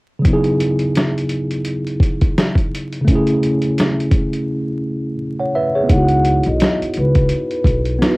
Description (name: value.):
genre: lo-fi hip hop.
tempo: 85 BPM.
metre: 4/4.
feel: swing 56% on 16ths.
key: C# minor.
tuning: A4 = 440 Hz.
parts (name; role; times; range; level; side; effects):
tine electric piano; accompaniment; 0.2-8.2 s; C#3 to F#5; -18 LUFS; equal; medium stereo tremolo, cassette tape.
dusty soul sampler-style drum kit; drums; 0.2-8.2 s; hi-hat, kick drum, snare drum; -16 LUFS; equal; overdrive, cassette tape.
vibraphone with soft mallets; melody; 5.9-8.2 s; B4 to F#5; -20 LUFS; equal; cassette tape.
upright bass; bass; 5.9-8.0 s; B1 to C#2; -18 LUFS; equal; none.
room: light reverb.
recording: home recording on cassette, vinyl crackle.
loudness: -15 LUFS.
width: side -24 dB against mid.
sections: 0.2-5.9 A section; 5.9-8.2 B section.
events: break 4.5-5.9.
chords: 0.2 C#m11; 3.1 Amaj13/C#; 5.9 C#m11.